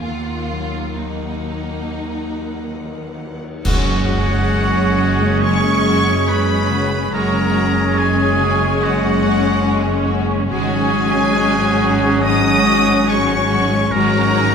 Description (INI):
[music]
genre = cinematic, emotional film score for orchestra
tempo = 69 BPM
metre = 4/4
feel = uneven beats, rubato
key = unclear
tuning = A4 = 442 Hz
[part]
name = rich studio violin section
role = melody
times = 0.0-14.5 s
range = Gb5 to Eb6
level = -24 LUFS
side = left 3 dB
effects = none
[part]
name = rich studio violin section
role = second line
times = 0.0-14.5 s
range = Ab3 to Gb4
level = -28 LUFS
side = left 2 dB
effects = none
[part]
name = rich studio viola section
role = accompaniment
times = 0.0-14.5 s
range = Ab3 to Db4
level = -24 LUFS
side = right 1 dB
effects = none
[part]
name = concert harp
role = arpeggios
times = 0.0-14.5 s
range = Gb2 to Eb5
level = -23 LUFS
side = left 6 dB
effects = none
[part]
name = rich studio double bass section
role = bass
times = 0.0-14.5 s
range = Gb1 to Eb2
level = -22 LUFS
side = right 3 dB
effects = none
[part]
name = rich symphonic cello section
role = bass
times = 0.0-14.5 s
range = Eb2 to Ab2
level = -24 LUFS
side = right 2 dB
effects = none
[part]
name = cymbal swell, clash cymbals and concert bass drum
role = percussion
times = 0.1-5.4 s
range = none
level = -24 LUFS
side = equal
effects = none
[part]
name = clear oboe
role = second line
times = 3.6-14.5 s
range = Gb4 to Eb5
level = -22 LUFS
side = equal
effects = none
[part]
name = mellow hollow flute section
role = second line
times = 3.6-14.5 s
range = Db6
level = -26 LUFS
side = right 6 dB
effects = none
[part]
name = warm clarinet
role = second line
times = 3.6-14.5 s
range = Gb4 to Ab4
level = -26 LUFS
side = right 4 dB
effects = none
[part]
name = warm French horn section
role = sustained chords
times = 3.6-14.5 s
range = Gb3 to Db4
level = -24 LUFS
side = left 4 dB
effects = none
[sound]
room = moderate scoring stage reverb, RT60 1.8 s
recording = minimal, uncompressed stereo recording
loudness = -14 LUFS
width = side -6 dB against mid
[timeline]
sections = 0.0-3.6 A section; 3.6-14.5 B section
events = band accent 3.6-4.5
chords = 0.1 Ebm; 3.6 Gbsus2; 10.5 Dbsus4/Ab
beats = | 0.05 0.95 1.85 2.75 | 3.65 4.51 5.42 6.28 | 7.13 7.98 8.83 9.68 | 10.52 11.36 12.25 13.11 | 13.94